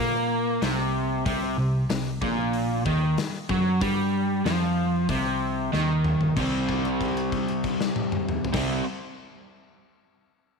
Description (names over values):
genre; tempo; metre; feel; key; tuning
classic rock; 94 BPM; 4/4; straight; unclear; A4 = 440 Hz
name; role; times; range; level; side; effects
overdriven semi-hollow guitar; riff; 0.0-8.8 s; Bb2 to C4; -24 LUFS; equal; none
picked electric bass; bass; 0.0-8.8 s; Bb1 to Bb2; -30 LUFS; equal; none
gated 80s drum kit; drums; 0.6-8.7 s; crash cymbal, hi-hat, kick drum, snare drum, toms; -32 LUFS; left 4 dB; none
room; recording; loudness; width
moderate echo chamber reverb, RT60 2.3 s; 1960s-style stereo; -23 LUFS; side -4 dB against mid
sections
0.0-6.4 A section; 6.4-8.9 B section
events
drum fill 5.7-6.4; held note 6.4-8.5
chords
0.0 C5